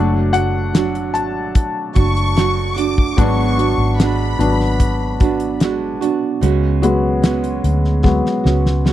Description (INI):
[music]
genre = pop ballad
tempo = 74 BPM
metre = 4/4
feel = straight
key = unclear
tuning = A4 = 440 Hz
[part]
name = felt-muted upright piano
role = accompaniment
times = 0.0-8.9 s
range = F#3 to A5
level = -20 LUFS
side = left 4 dB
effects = none
[part]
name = nylon-string guitar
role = arpeggios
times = 0.0-8.9 s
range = C#3 to F#4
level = -21 LUFS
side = right 10 dB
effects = none
[part]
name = vintage muted fingered electric bass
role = bass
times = 0.0-8.9 s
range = F#1 to D2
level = -18 LUFS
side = equal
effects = none
[part]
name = damped 70s drum kit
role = drums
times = 0.3-8.9 s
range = hi-hat, kick drum, snare drum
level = -16 LUFS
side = equal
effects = none
[part]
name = warm studio violin section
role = second line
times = 2.0-5.6 s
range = B5 to D6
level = -24 LUFS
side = left 2 dB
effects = none
[sound]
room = studio reverb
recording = dry, close 1970s-style studio recording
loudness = -14 LUFS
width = side -12 dB against mid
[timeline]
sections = 0.0-8.9 A section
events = felt piano solo 0.0-8.9; drum fill 8.0-8.9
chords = 0.0 D/F#; 3.2 G#m7b5; 6.4 C#7sus4